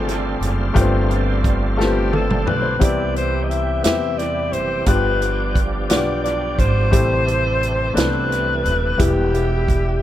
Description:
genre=slow gospel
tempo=58 BPM (dotted quarters)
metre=6/8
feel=straight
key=C major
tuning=A4 = 440 Hz
part: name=clear grand piano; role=accompaniment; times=0.0-10.0 s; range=G2 to C5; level=-23 LUFS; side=left 4 dB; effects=dub echo
part: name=bright tonewheel organ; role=sustained chords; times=0.0-10.0 s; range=C3 to G4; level=-26 LUFS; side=right 2 dB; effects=slow rotary speaker, overdrive, chorus vibrato
part: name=upright bass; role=bass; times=0.0-10.0 s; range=Eb1 to E2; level=-22 LUFS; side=right 1 dB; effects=none
part: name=natural country drum kit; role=drums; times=0.1-9.8 s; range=hi-hat, kick drum, snare drum, toms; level=-21 LUFS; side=right 1 dB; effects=none
part: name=warm alto saxophone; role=melody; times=1.8-10.0 s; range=G4 to E5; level=-22 LUFS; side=left 1 dB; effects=dub echo
room=little or no reverb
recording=echo-heavy mix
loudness=-16 LUFS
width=side -12 dB against mid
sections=0.0-2.8 A section; 2.8-10.0 B section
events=drum fill 1.8-2.8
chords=0.0 G9sus4; 2.8 Cmaj7; 4.9 G7; 6.9 Am9; 9.0 Em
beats=| 0.76 1.78 | 2.81 3.84 | 4.87 5.90 | 6.93 7.96 | 9.00

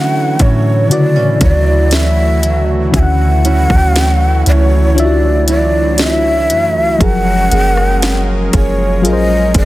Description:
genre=contemporary R&B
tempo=59 BPM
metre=4/4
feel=straight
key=unclear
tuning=A4 = 440 Hz
part: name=breathy mellow shakuhachi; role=melody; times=0.0-9.7 s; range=C#5 to G#5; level=-16 LUFS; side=equal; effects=tape echo
part: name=mellow FM electric piano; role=accompaniment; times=0.0-9.7 s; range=C#3 to F#5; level=-18 LUFS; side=left 3 dB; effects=chorus
part: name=warm analog pad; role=sustained chords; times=0.0-9.7 s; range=E3 to A#4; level=-21 LUFS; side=equal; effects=chorus
part: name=nylon-string guitar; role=arpeggios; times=0.0-9.7 s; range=D3 to G#4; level=-21 LUFS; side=right 6 dB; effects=none
part: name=soft 808-style bass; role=bass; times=0.0-9.7 s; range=F#1 to D3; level=-14 LUFS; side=equal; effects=none
part: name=trap drum kit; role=drums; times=0.4-9.7 s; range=hi-hat, kick drum, rim click, snare drum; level=-15 LUFS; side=equal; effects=none
room=digital ambience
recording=dense, heavily limited modern master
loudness=-9 LUFS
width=side -16 dB against mid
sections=0.0-9.7 A section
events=none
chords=0.0 Dmaj9; 7.0 F#maj9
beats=0.90 1.92 | 2.94 3.96 4.97 5.99 | 7.01 8.02 9.04

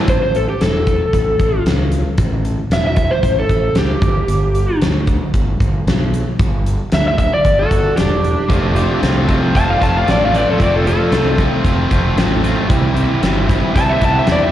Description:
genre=blues rock power trio and southern rock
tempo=114 BPM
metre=4/4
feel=straight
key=unclear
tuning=A4 = 440 Hz
part: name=overdriven slide guitar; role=melody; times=0.0-14.5 s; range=G4 to A5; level=-18 LUFS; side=equal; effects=slapback echo, analog delay
part: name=distorted electric guitar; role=riff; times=0.0-0.1, 8.5-14.5 s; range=C3 to F4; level=-17 LUFS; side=equal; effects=distortion, slapback echo
part: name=fuzz fingered electric bass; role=bass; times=0.1-14.5 s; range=E1 to E2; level=-18 LUFS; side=equal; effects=overdrive
part: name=big rock drum kit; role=drums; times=0.1-14.4 s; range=hi-hat, kick drum, snare drum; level=-18 LUFS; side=equal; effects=none
part: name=smooth overdriven lead guitar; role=second line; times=7.6-14.5 s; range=D4 to F#5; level=-27 LUFS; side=right 2 dB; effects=slapback echo
room=studio reverb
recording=live gig heard through the venue's PA, recital hall reverb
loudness=-13 LUFS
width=side -12 dB against mid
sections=0.1-14.5 A section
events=none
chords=0.1 A; 4.0 G5; 8.5 F; 12.7 C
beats=| 0.10 0.62 1.14 1.67 | 2.19 2.72 3.24 3.77 | 4.29 4.82 5.34 5.87 | 6.39 6.92 7.45 7.97 | 8.49 9.02 9.55 10.07 | 10.60 11.12 11.65 12.18 | 12.70 13.23 13.76 14.28

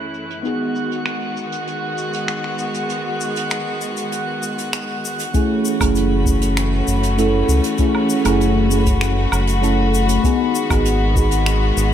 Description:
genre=sunset chillout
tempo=98 BPM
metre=4/4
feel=straight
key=F# dorian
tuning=A4 = 440 Hz
part: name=mellow FM electric piano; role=accompaniment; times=0.0-11.9 s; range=F#2 to A4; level=-21 LUFS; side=moving between left 4 dB and right 4 dB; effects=chorus, phaser, auto-pan, cassette tape, tape echo
part: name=warm chamber string section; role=sustained chords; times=0.0-11.9 s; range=D#3 to F#4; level=-23 LUFS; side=left 1 dB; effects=none
part: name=drifting glass-harmonics texture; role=texture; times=0.0-11.9 s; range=B5 to F#6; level=-30 LUFS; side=equal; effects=chorus, built-in reverb
part: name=jazz brush drum kit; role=drums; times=0.1-11.9 s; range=finger snaps, hi-hat, shaker, woodblock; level=-27 LUFS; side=equal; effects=none
part: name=electronic kick drum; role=drums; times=5.3-11.3 s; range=none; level=-19 LUFS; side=equal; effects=none
part: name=round analog bass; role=bass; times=5.8-11.9 s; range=F#1 to C#2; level=-18 LUFS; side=equal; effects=none
room=light reverb, small room ambience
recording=low-pass filter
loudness=-16 LUFS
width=side -10 dB against mid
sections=0.0-5.3 A section; 5.3-11.9 B section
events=filter sweep on FM electric piano 0.0-5.3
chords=0.4 G#m7; 5.3 F#m7; 10.2 G#m7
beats=| 0.45 1.06 1.67 2.28 | 2.90 3.51 4.12 4.73 | 5.34 5.96 6.57 7.18 | 7.79 8.41 9.02 9.63 | 10.24 10.86 11.47

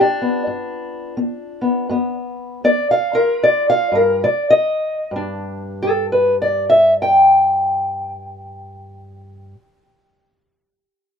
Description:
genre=acoustic country blues, solo or duo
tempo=67-88 BPM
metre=4/4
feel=swing 61% on 8ths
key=G mixolydian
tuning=A4 = 439 Hz
part: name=fingerpicked steel-string acoustic guitar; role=solo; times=0.0-10.2 s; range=G2 to G5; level=-15 LUFS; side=left 1 dB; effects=none
room=moderate booth ambience, RT60 0.2 s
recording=none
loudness=-14 LUFS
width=side -7 dB against mid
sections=0.0-5.1 A section; 5.1-8.7 B section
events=slowing down 0.0-5.1; steel-string acoustic guitar solo 0.0-5.1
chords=0.0 G7; 4.2 N.C.; 5.1 G5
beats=0.46 1.17 | 1.89 2.64 3.42 4.24 | 5.10 5.99 6.88 7.78

